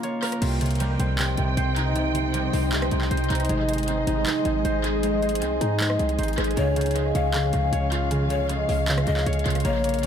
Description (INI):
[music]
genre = hip hop, trap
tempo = 156 BPM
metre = 4/4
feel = half-time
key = C phrygian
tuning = A4 = 440 Hz
[part]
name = concert harp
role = arpeggios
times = 0.0-10.1 s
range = C3 to Db5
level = -24 LUFS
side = equal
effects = tape echo
[part]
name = trap drum kit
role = drums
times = 0.0-10.1 s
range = crash cymbal, handclaps, hi-hat, rim click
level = -32 LUFS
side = right 1 dB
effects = overdrive, tape echo
[part]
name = dark symphonic string section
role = sustained chords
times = 0.4-10.1 s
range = Db3 to G5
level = -31 LUFS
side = equal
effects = none
[part]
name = hard-hitting 808-style bass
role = bass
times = 0.4-10.1 s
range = Ab1 to Ab2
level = -26 LUFS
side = equal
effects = none
[part]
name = breathy mellow large pan pipes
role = second line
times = 6.6-10.1 s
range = Db5 to F5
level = -30 LUFS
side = left 6 dB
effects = tape echo
[sound]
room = light reverb, small room ambience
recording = echo-heavy mix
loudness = -21 LUFS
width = side -8 dB against mid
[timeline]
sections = 0.4-10.1 A section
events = break 0.0-0.4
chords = 0.4 Cm; 3.5 Ab; 6.6 Db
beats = 0.03 | 0.42 0.80 1.19 1.57 | 1.96 2.34 2.73 3.11 | 3.50 3.88 4.26 4.65 | 5.03 5.42 5.80 6.19 | 6.57 6.96 7.34 7.73 | 8.11 8.49 8.88 9.26 | 9.65 10.03